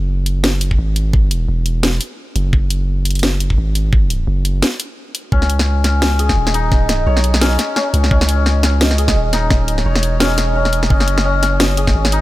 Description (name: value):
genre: half-time drum and bass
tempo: 172 BPM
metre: 4/4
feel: swing 57% on 16ths, half-time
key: C# minor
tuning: A4 = 441 Hz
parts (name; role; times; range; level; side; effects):
- long sustained 808-style bass; bass; 0.0-12.2 s; D#1 to C#2; -16 LUFS; equal; none
- drum and bass drum kit; drums; 0.3-12.2 s; hi-hat, snare drum; -19 LUFS; equal; none
- electronic kick drum; drums; 0.7-11.9 s; none; -14 LUFS; equal; none
- santur; arpeggios; 5.3-12.2 s; C#4 to C#5; -20 LUFS; left 4 dB; vintage 12-bit sampler grit, tape echo
- backwards swelling texture; texture; 6.4-12.2 s; D#5; -26 LUFS; right 4 dB; built-in reverb
room: digital ambience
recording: none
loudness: -13 LUFS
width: side -16 dB against mid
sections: 0.0-12.2 A section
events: break 4.6-5.3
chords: 0.0 Eadd9 (rootless); 5.3 C#m; 10.9 F#5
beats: 0.09 0.44 0.79 | 1.14 1.49 1.83 2.18 | 2.53 2.88 3.23 3.58 | 3.93 4.28 4.62 4.97 | 5.32 5.67 6.02 6.37 | 6.72 7.07 7.42 7.76 | 8.11 8.46 8.81 9.16 | 9.51 9.86 10.21 10.55 | 10.90 11.25 11.60 11.95